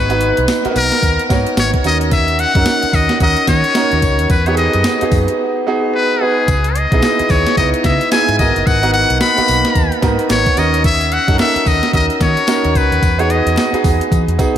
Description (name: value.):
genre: R&B, new jack swing.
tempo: 110 BPM.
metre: 4/4.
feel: swing 60% on 16ths.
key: G# minor.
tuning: A4 = 444 Hz.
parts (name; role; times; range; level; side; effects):
trumpet with metal mute; melody; 0.0-13.8 s; G#4 to B5; -16 LUFS; left 3 dB; digital delay.
clear concert grand piano; accompaniment; 0.0-14.6 s; A#3 to C#5; -18 LUFS; right 2 dB; slapback echo.
vintage muted fingered electric bass; bass; 0.0-14.6 s; F#1 to E3; -18 LUFS; equal; none.
clean 12-bit digital drum machine; drums; 0.1-14.6 s; hi-hat, kick drum, snare drum, tambourine; -17 LUFS; equal; overdrive.
group handclap; percussion; 7.0-13.7 s; none; barely audible; none; none.
room: moderate lush hall reverb, RT60 2.7 s.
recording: big arena sound.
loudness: -12 LUFS.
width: side -10 dB against mid.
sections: 0.0-14.6 A section.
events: drums muted 5.4-6.5.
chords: 0.0 G#m9; 1.8 D#m7; 4.3 Emaj7; 6.5 C#m7; 8.4 G#m9; 10.6 D#m7; 13.0 Emaj7.